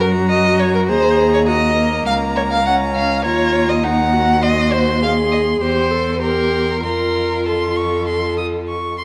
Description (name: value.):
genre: quick classical-period movement for string quartet.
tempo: 96-103 BPM.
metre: 4/4.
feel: rubato.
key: unclear.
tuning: A4 = 440 Hz.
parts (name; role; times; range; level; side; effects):
rich violin; melody; 0.0-9.0 s; Bb5 to Eb6; -26 LUFS; equal; none.
rich violin; second line; 0.0-9.0 s; A4 to Gb5; -21 LUFS; equal; none.
warm viola; accompaniment; 0.0-9.0 s; Bb3 to A4; -23 LUFS; equal; none.
rich cello; bass; 0.0-9.0 s; Db2 to Gb2; -22 LUFS; equal; none.
room: moderate recital hall reverb, RT60 1.8 s.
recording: none.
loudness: -17 LUFS.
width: mono.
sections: 0.0-9.0 A section.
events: none.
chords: 0.0 Gb; 0.9 Eb5; 2.1 Bbm/Db; 3.2 Ebm; 4.4 Cdim/Eb; 5.6 C7/E; 6.8 F.